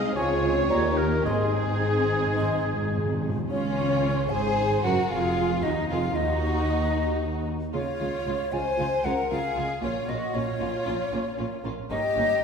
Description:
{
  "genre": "classical",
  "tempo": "113 BPM",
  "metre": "4/4",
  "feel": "rubato",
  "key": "Ab major, Db major from 3.5 s",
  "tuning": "A4 = 441 Hz",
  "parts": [
    { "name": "warm symphonic violin section", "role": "melody", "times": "0.0-12.2 s", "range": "Db4 to Ab4", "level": "-34 LUFS", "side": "left 3 dB", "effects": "none" },
    { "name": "clear clarinet", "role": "second line", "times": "0.0-3.2 s", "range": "Ab4 to Db5", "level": "-33 LUFS", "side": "equal", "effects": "none" },
    { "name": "warm oboe", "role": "second line", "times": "0.0-3.2 s", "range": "Ab4 to Eb5", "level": "-31 LUFS", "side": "right 1 dB", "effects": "none" },
    { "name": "warm symphonic violin section", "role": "second line", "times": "0.0-12.4 s", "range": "F4 to Eb5", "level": "-32 LUFS", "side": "left 2 dB", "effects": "none" },
    { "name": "warm symphonic viola section", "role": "accompaniment", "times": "0.0-12.2 s", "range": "Ab3 to Ab4", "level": "-31 LUFS", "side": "right 2 dB", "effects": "none" },
    { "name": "mellow French horn section", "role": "sustained chords", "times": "0.0-3.2 s", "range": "Ab3 to Ab4", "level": "-30 LUFS", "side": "left 2 dB", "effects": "none" },
    { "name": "dark symphonic cello section", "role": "bass", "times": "0.0-12.2 s", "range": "Db2 to Eb3", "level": "-32 LUFS", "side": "right 1 dB", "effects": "none" },
    { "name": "warm symphonic double bass section", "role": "bass", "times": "0.0-12.2 s", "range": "F1 to Eb2", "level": "-32 LUFS", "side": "right 2 dB", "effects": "none" },
    { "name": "concert flute", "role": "second line", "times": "0.2-12.4 s", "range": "Db5 to C6", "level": "-29 LUFS", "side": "left 1 dB", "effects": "none" },
    { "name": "mellow bassoon", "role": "accompaniment", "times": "0.2-2.6 s", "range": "F3 to Ab3", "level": "-33 LUFS", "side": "left 1 dB", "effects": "none" },
    { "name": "timpani", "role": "percussion", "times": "1.3-3.4 s", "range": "Ab2", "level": "-32 LUFS", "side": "equal", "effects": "none" }
  ],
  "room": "wet scoring stage reverb, RT60 1.6 s",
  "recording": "recorded in a church or concert hall",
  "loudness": "-23 LUFS",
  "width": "side -6 dB against mid",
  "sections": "0.0-3.5 A section; 3.5-12.4 B section",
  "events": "timpani fill 1.2-3.5",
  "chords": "0.2 Dbmaj7; 0.7 Eb7; 1.2 Ab; 3.5 Db; 5.6 Ebmadd9/F; 7.7 Db; 9.8 Bbm; 11.9 Eb7/G"
}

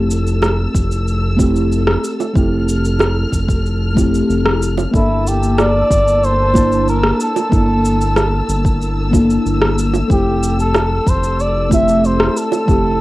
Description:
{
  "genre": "sunset chillout",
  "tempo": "93 BPM",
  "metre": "4/4",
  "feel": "straight",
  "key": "unclear",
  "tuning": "A4 = 441 Hz",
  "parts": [
    { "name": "mellow FM electric piano", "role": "accompaniment", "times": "0.0-13.0 s", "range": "A3 to A5", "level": "-18 LUFS", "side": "equal", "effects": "chorus, phaser, auto-pan, cassette tape, tape echo" },
    { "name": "dark studio string section", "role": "sustained chords", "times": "0.0-13.0 s", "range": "Bb3 to F6", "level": "-26 LUFS", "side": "left 1 dB", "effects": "cassette tape" },
    { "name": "round analog bass", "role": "bass", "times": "0.0-13.0 s", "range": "F1 to G1", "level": "-18 LUFS", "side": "equal", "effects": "none" },
    { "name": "electronic cabasa and rim click", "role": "drums", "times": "0.1-12.8 s", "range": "none", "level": "-19 LUFS", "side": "equal", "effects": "overdrive, cassette tape" },
    { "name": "bongos", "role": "percussion", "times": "0.4-12.6 s", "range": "none", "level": "-21 LUFS", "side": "right 7 dB", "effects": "none" },
    { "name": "electronic kick drum", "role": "drums", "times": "0.7-12.8 s", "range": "none", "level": "-16 LUFS", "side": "equal", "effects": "overdrive, cassette tape" },
    { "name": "trumpet with cup mute", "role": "melody", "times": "5.0-13.0 s", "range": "E4 to E5", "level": "-18 LUFS", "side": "equal", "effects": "cassette tape, tape echo, plate reverb" }
  ],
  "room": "moderate booth ambience, RT60 0.2 s",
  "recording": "home recording on cassette",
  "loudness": "-13 LUFS",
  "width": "side -17 dB against mid",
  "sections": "0.0-13.0 A section",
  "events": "none",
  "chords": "0.0 Fmaj7; 4.9 Gm69; 10.1 Fmaj7"
}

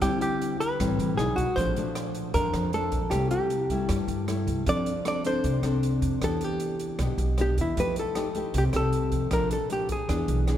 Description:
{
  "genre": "bossa nova",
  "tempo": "155 BPM",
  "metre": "4/4",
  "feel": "straight",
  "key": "unclear",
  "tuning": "A4 = 440 Hz",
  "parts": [
    { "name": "hollow-body jazz guitar", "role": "melody", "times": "0.0-10.6 s", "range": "E4 to D5", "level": "-29 LUFS", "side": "equal", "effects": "none" },
    { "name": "nylon-string guitar", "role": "accompaniment", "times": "0.0-10.6 s", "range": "F2 to A4", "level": "-29 LUFS", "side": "left 2 dB", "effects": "none" },
    { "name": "upright bass", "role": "bass", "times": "0.0-10.6 s", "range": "A1 to G2", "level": "-29 LUFS", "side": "right 1 dB", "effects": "none" },
    { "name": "open jazz drum kit", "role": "drums", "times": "0.0-10.6 s", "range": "hi-hat, kick drum, rim click", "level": "-35 LUFS", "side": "right 1 dB", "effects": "none" }
  ],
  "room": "moderate cathedral reverb, RT60 4.3 s",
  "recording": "recorded in a church or concert hall",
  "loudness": "-24 LUFS",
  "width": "side -11 dB against mid",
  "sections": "0.0-10.6 A section",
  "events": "none",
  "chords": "0.0 D9sus4; 1.2 Bmaj7; 1.6 Bbmaj7; 3.1 C6; 4.7 F6; 6.2 Em7; 7.8 F9; 9.3 Bbmaj7"
}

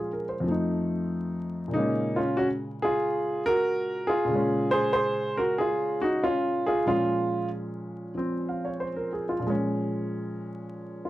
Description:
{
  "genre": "solo jazz",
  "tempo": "93 BPM",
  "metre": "4/4",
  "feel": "swing 67% on 8ths",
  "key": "Bb minor",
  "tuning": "A4 = 440 Hz",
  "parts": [
    { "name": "warm concert grand piano", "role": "solo", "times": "0.0-11.1 s", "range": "F2 to F5", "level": "-25 LUFS", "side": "equal", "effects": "none" }
  ],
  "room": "little or no reverb",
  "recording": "dry, close 1970s-style studio recording, vinyl crackle",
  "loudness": "-25 LUFS",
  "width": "side -15 dB against mid",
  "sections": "0.0-1.7 A section; 1.7-11.1 A section",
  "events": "none",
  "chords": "0.4 F7; 1.7 Bbm7"
}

